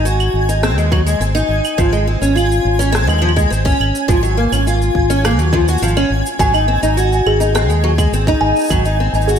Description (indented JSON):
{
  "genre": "folktronica",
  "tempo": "104 BPM",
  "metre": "4/4",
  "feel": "straight",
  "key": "Ab mixolydian",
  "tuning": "A4 = 440 Hz",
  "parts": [
    { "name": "picked old ladder-braced acoustic guitar", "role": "arpeggios", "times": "0.0-9.4 s", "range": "F3 to Gb4", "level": "-17 LUFS", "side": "equal", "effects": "analog chorus, ping-pong delay" },
    { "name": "fingered electric bass", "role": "bass", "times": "0.0-9.4 s", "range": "Ab1 to Eb2", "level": "-16 LUFS", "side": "equal", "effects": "none" },
    { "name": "twinkling granular texture", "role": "texture", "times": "0.0-9.4 s", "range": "Ab5", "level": "-24 LUFS", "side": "equal", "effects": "built-in reverb, analog chorus" },
    { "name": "electronic shaker, claves and rim click", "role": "drums", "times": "0.1-9.4 s", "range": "none", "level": "-24 LUFS", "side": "right 1 dB", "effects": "none" },
    { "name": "electronic kick drum", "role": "drums", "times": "0.9-8.8 s", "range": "none", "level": "-17 LUFS", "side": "equal", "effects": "none" },
    { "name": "kalimba", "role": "second line", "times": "6.4-9.4 s", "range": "Ab4 to Ab5", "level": "-19 LUFS", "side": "right 1 dB", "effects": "diffuse ambient delay" }
  ],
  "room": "light reverb, digital ambience",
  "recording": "none",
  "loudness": "-12 LUFS",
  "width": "side -8 dB against mid",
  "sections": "0.0-9.4 A section",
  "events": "none",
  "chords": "0.0 Ab7; 1.8 Dbmaj7/Ab; 4.1 Gbmaj7(no3)/Ab; 6.4 Ab7",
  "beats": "0.05 0.63 1.21 | 1.78 2.36 2.94 3.51 | 4.09 4.67 5.25 5.82 | 6.40 6.97 7.55 8.13 | 8.71 9.28"
}